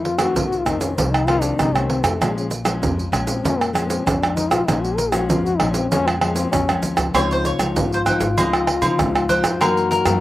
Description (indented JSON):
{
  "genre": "samba and choro",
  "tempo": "97 BPM",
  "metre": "4/4",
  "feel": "straight",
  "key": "Bb minor",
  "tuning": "A4 = 440 Hz",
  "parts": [
    { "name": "breathy trombone", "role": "second line", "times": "0.0-10.2 s", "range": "Db3 to Bb4", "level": "-23 LUFS", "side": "left 3 dB", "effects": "slapback echo" },
    { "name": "nylon-string guitar", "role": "accompaniment", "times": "0.0-10.2 s", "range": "F2 to Eb4", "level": "-25 LUFS", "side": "left 3 dB", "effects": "none" },
    { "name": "upright bass", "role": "bass", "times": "0.0-10.2 s", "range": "Ab1 to Db3", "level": "-26 LUFS", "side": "equal", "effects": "none" },
    { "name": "pandeiro, egg shaker, tamborim, surdo and agogo bells", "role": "percussion", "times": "0.1-10.2 s", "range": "none", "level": "-20 LUFS", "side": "right 3 dB", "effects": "none" },
    { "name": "cavaquinho", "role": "melody", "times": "7.2-10.2 s", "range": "Bb4 to Eb5", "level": "-22 LUFS", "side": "left 2 dB", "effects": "slapback echo" }
  ],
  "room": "little or no reverb",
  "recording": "recorded outdoors, with no room sound",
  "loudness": "-17 LUFS",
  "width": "side -15 dB against mid",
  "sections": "0.0-7.1 A section; 7.1-10.2 B section",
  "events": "trombone solo 0.0-7.1",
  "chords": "0.0 F7; 2.2 Bbm7; 7.1 Dbmaj9; 9.6 Gb13",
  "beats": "0.36 0.98 1.59 | 2.21 2.83 3.44 4.06 | 4.68 5.30 5.91 6.53 | 7.15 7.76 8.38 9.00 | 9.62"
}